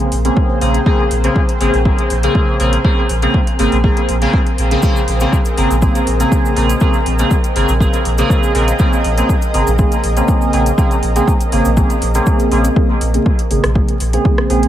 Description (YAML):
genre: dub techno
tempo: 121 BPM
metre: 4/4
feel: straight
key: Bb minor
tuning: A4 = 435 Hz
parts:
  - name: granular cloud pad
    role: sustained chords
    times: 0.0-14.7 s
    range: C4 to Eb5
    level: -24 LUFS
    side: right 1 dB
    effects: built-in reverb, sidechain pumping
  - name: resonant sweep polysynth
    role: stabs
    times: 0.0-14.7 s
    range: Db3 to Ab4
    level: -16 LUFS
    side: equal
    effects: chorus, phaser, dub echo
  - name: deep house drum kit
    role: drums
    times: 0.0-14.7 s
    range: hi-hat, rim click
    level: -25 LUFS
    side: left 1 dB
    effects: overdrive
  - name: soft dub sub bass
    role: bass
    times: 0.1-14.7 s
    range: Ab1 to Bb1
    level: -16 LUFS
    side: equal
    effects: sidechain pumping
  - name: electronic kick drum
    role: drums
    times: 0.4-14.4 s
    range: none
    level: -15 LUFS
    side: equal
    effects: overdrive
  - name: cabasa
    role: percussion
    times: 4.8-12.7 s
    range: none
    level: -32 LUFS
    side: left 2 dB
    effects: none
room: digital ambience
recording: vinyl crackle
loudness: -12 LUFS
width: side -12 dB against mid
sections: 0.0-12.8 A section; 12.8-14.7 A section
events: none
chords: 0.0 Bbm9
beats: 0.37 | 0.86 1.36 1.85 2.35 | 2.85 3.34 3.84 4.33 | 4.83 5.33 5.82 6.32 | 6.81 7.31 7.80 8.30 | 8.80 9.29 9.79 10.29 | 10.78 11.28 11.77 12.27 | 12.76 13.26 13.76 14.25